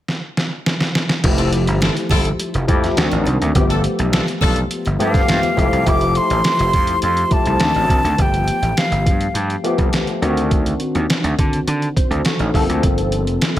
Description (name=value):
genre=polished 1980s jazz-funk pop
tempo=104 BPM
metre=4/4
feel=straight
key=F major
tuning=A4 = 438 Hz
part: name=trip hop sampler-style drum kit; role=drums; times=0.1-13.6 s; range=crash cymbal, hi-hat, kick drum, snare drum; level=-19 LUFS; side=equal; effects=overdrive, gated reverb
part: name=barky tine electric piano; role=accompaniment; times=1.2-13.6 s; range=Eb3 to C5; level=-21 LUFS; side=left 2 dB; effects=ensemble chorus
part: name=gritty slap bass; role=bass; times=1.2-13.6 s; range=F1 to D3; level=-20 LUFS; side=equal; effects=overdrive
part: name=congas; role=percussion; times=1.2-5.7 s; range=none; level=-32 LUFS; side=right 2 dB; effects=none
part: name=warm horn section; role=second line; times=1.4-4.6 s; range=C4 to A4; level=-25 LUFS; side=left 2 dB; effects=none
part: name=breathy concert flute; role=melody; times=5.0-9.4 s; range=F5 to D6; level=-19 LUFS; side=equal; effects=ping-pong delay
room=light reverb, small room reverb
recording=none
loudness=-15 LUFS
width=side -13 dB against mid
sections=0.0-1.2 A section; 1.2-5.9 B section; 5.9-13.6 C section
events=drum fill 0.1-1.2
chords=0.0 N.C.; 1.2 Fmaj9; 3.0 D7b9; 3.5 G9; 5.6 Fmaj9; 7.6 D7b9; 8.2 G9; 10.2 D7b9; 12.5 Gm11